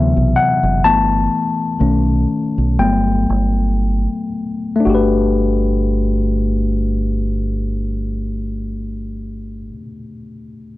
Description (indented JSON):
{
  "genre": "R&B",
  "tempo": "56-64 BPM",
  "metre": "4/4",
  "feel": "swing 58% on 16ths",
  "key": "G major",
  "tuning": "A4 = 441 Hz",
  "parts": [
    { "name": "tine electric piano", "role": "accompaniment", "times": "0.0-10.8 s", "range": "C3 to A5", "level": "-17 LUFS", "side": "left 3 dB", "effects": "none" },
    { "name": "deep dub fingered electric bass", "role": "bass", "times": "0.0-9.7 s", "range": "F#1 to D2", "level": "-18 LUFS", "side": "right 1 dB", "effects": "tube saturation" }
  ],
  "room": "little or no reverb",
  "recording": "dry, close 1970s-style studio recording",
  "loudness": "-15 LUFS",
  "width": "side -17 dB against mid",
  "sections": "0.0-4.8 A section; 4.8-9.1 B section",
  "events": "slowing down 0.0-4.8; tine electric piano solo 0.0-4.8",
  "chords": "0.0 D13; 0.8 G69; 1.8 B9; 2.8 Gmaj9",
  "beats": "| 0.81 1.78 2.77 3.79 | 4.84 5.91 6.98 8.05"
}